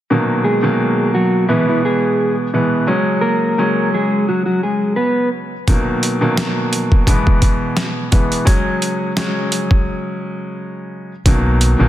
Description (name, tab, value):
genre	hip hop, boom-bap hip-hop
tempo	86 BPM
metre	4/4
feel	swing 56% on 16ths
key	F# mixolydian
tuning	A4 = 438 Hz
part	warm baby grand piano	accompaniment	0.1-11.9 s	B2 to C#4	-17 LUFS	equal	high-pass filter, low-pass filter
part	mellow electric guitar	melody	0.4-5.3 s	E3 to B4	-17 LUFS	equal	high-pass filter, low-pass filter
part	boom bap sampler-style drum kit	drums	5.7-11.8 s	hi-hat, kick drum, snare drum	-15 LUFS	equal	overdrive
part	deep dub fingered electric bass	bass	11.3-11.9 s	A#1 to B1	-14 LUFS	equal	none
room	moderate echo chamber reverb, RT60 2.2 s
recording	dense, heavily limited modern master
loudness	-14 LUFS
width	side -13 dB against mid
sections	0.1-11.3 A section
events	break 9.9-11.3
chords	0.1 Bmaj7; 1.5 E; 2.9 F#sus2; 5.7 Bmaj7; 7.1 E; 8.5 F#sus2; 11.3 Bmaj7